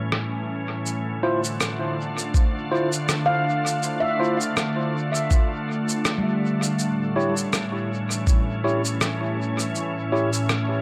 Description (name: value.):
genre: ambient dub.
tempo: 81 BPM.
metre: 4/4.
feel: swing 57% on 16ths.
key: D minor.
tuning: A4 = 443 Hz.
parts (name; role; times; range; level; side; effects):
soft additive organ-like pad; sustained chords; 0.0-10.8 s; A2 to F4; -28 LUFS; equal; ensemble chorus, built-in reverb.
electronic rim click and shaker; drums; 0.1-10.7 s; none; -30 LUFS; equal; low-pass filter on snare, low-pass filter on perc, dub echo.
tine electric piano; stabs; 1.2-10.3 s; E4 to C#5; -30 LUFS; equal; dub echo.
electronic kick drum; drums; 2.3-8.4 s; none; -21 LUFS; equal; none.
handpan; arpeggios; 3.3-8.5 s; G3 to F5; -30 LUFS; equal; tape echo.
room: moderate spring reverb, RT60 2.6 s.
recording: none.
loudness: -24 LUFS.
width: mono.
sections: 0.9-10.8 A section.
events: none.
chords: 0.0 A; 0.9 Dm; 6.8 A7.